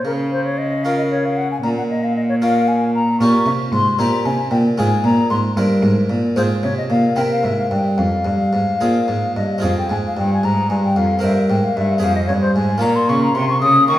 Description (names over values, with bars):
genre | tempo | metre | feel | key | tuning
classical, baroque-style sonata movement with continuo | 76 BPM (dotted quarters) | 6/8 | straight | Bb minor, F minor from 3.2 s | A4 = 441 Hz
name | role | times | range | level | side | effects
bright baroque flute | melody | 0.0-14.0 s | Bb4 to Eb6 | -20 LUFS | left 2 dB | none
harpsichord | accompaniment | 0.0-14.0 s | F2 to Db5 | -20 LUFS | equal | none
rich cello | bass | 0.0-14.0 s | F2 to Eb3 | -19 LUFS | right 1 dB | none
room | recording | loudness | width
wet recital hall reverb, RT60 1.4 s | heard from further back in the room | -15 LUFS | side -13 dB against mid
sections
0.0-9.6 A section; 9.6-14.0 B section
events
none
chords
0.1 Bbm/Db; 1.6 Bbm; 3.2 Gm7b5/Bb; 4.0 C7/Bb; 4.8 Fm/Ab; 5.6 C7/G; 6.4 Fm/Ab; 7.2 C7; 8.0 Fm; 11.2 C5/G; 12.0 Fm; 12.8 Bbm